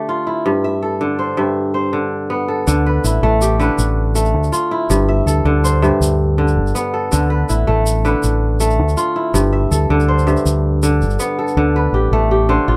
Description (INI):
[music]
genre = west african traditional, West African string and xylophone music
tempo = 108 BPM (dotted quarters)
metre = 12/8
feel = straight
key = D dorian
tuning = A4 = 440 Hz
[part]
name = kora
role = arpeggios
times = 0.0-12.8 s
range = G2 to E5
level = -19 LUFS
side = equal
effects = none
[part]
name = fingered electric bass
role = bass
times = 2.7-12.8 s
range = G1 to D2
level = -18 LUFS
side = equal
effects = none
[part]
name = tube shaker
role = percussion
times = 2.7-11.5 s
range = none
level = -30 LUFS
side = equal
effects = none
[sound]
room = light reverb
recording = none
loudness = -16 LUFS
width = mono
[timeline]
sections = 0.0-2.7 A section; 2.7-11.6 A section; 11.6-12.8 B section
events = none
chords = 0.5 G; 2.7 Dm; 4.9 G; 7.1 Dm; 9.3 G; 11.6 D5